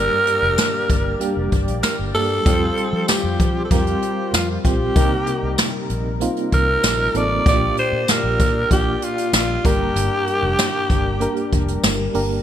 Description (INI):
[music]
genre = 1980s-style pop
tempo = 96 BPM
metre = 4/4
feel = straight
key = G minor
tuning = A4 = 440 Hz
[part]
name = breathy alto saxophone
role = melody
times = 0.0-12.2 s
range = F4 to D5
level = -21 LUFS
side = equal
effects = none
[part]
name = FM electric piano with tremolo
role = accompaniment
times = 0.0-12.4 s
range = G2 to Bb4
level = -25 LUFS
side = right 3 dB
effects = none
[part]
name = analog synth brass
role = stabs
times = 0.0-12.4 s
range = G3 to D5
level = -28 LUFS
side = left 3 dB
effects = chorus
[part]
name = vintage muted fingered electric bass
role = bass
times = 0.0-12.4 s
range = F1 to F3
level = -24 LUFS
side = left 1 dB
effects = none
[part]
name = jazz brush drum kit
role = drums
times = 0.3-12.3 s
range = hi-hat, kick drum, snare drum, tambourine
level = -20 LUFS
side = equal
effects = none
[sound]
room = light reverb, small room ambience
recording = bright 1980s-style digital production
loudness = -16 LUFS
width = side -10 dB against mid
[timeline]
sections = 0.0-12.4 A section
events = none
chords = 0.0 Gm; 2.5 Fsus2; 5.0 Cm7; 7.5 Bb6; 9.6 Gm